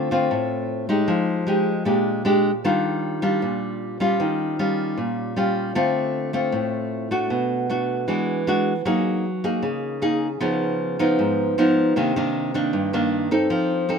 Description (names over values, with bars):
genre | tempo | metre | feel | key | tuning
bossa nova | 155 BPM | 4/4 | straight | unclear | A4 = 440 Hz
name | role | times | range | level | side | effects
nylon-string guitar | solo | 0.0-14.0 s | G2 to A4 | -20 LUFS | equal | none
room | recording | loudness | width
light reverb | minimal, uncompressed stereo recording | -20 LUFS | side -6 dB against mid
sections
0.0-14.0 A section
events
none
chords
0.0 Dm7; 1.1 Fm9; 1.9 Bb6; 2.6 Ebmaj9; 4.2 Eb9; 5.7 Dm7; 7.3 Bm7; 8.1 E9; 8.9 Gb69; 10.4 Db9; 12.0 Cm9